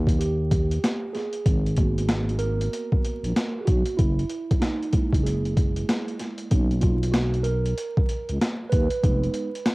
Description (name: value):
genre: hip hop, jazz-hop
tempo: 95 BPM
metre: 4/4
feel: swing 62% on 16ths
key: F# major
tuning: A4 = 440 Hz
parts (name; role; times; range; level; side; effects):
- mellow tine electric piano; accompaniment; 0.0-9.7 s; G#3 to B4; -29 LUFS; right 3 dB; slow stereo tremolo
- growling FM bass; bass; 0.0-9.3 s; F1 to D#2; -25 LUFS; equal; none
- boom bap sampler-style drum kit; drums; 0.1-9.7 s; hi-hat, kick drum, snare drum; -23 LUFS; equal; overdrive
room: digital ambience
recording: home recording on cassette, vinyl crackle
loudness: -21 LUFS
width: side -22 dB against mid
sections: 0.0-9.7 A section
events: tine electric piano solo 0.0-9.7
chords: 0.0 D#; 1.5 G#m9; 4.0 F#9; 6.5 Bmaj9; 9.0 Fm7b5